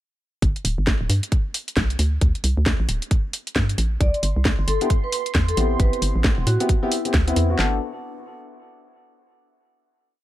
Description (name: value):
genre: UK garage, two-step garage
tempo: 134 BPM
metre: 4/4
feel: swing 61% on 16ths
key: G major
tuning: A4 = 441 Hz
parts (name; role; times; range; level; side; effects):
- hollow knocking FM bass; bass; 0.4-7.8 s; D1 to A2; -21 LUFS; equal; none
- garage drum kit; drums; 0.4-7.7 s; handclaps, kick drum, snare drum; -21 LUFS; equal; none
- garage drum kit; drums; 0.4-7.5 s; hi-hat, snare drum; -25 LUFS; equal; none
- vibraphone with medium hard mallets; melody; 4.0-7.8 s; D4 to D5; -28 LUFS; left 2 dB; tape echo
- warm analog pad; sustained chords; 4.0-7.6 s; C6; -34 LUFS; right 8 dB; chorus, sidechain pumping
- dark grand piano; stabs; 4.8-7.8 s; B3 to B4; -27 LUFS; left 2 dB; tape echo
room: digital ambience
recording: none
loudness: -19 LUFS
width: side -14 dB against mid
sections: 0.4-7.6 groove; 7.6-9.4 final chord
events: none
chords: 0.4 G; 2.0 Dsus4; 4.0 C; 5.6 Am9; 7.6 Gmaj7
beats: | 0.42 0.87 1.32 1.77 | 2.21 2.66 3.11 3.56 | 4.01 4.45 4.90 5.35 | 5.80 6.25 6.69 7.14 | 7.59